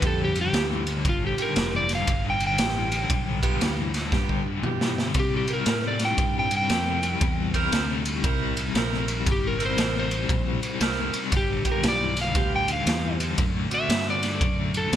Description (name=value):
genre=electric blues shuffle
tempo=117 BPM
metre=4/4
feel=swing 64% on 8ths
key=G mixolydian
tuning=A4 = 440 Hz
part: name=electric slide guitar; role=melody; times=0.0-14.9 s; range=F4 to G5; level=-28 LUFS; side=equal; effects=none
part: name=crunchy overdriven guitar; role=riff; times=0.0-15.0 s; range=G2 to B3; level=-30 LUFS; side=left 6 dB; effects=tremolo
part: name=clear saxophone section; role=stabs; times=0.0-15.0 s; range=B3 to Bb4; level=-32 LUFS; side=right 6 dB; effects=none
part: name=fingered electric bass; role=bass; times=0.0-15.0 s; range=F1 to C3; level=-30 LUFS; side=equal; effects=none
part: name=raw garage drum kit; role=drums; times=0.0-15.0 s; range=kick drum, ride cymbal, snare drum, toms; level=-26 LUFS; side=right 1 dB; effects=none
room=light reverb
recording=none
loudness=-22 LUFS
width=side -10 dB against mid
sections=0.0-15.0 A section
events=electric slide guitar solo 0.0-15.0; drum fill 4.1-5.2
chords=0.0 G7; 5.2 C7; 11.3 G7; 13.4 D7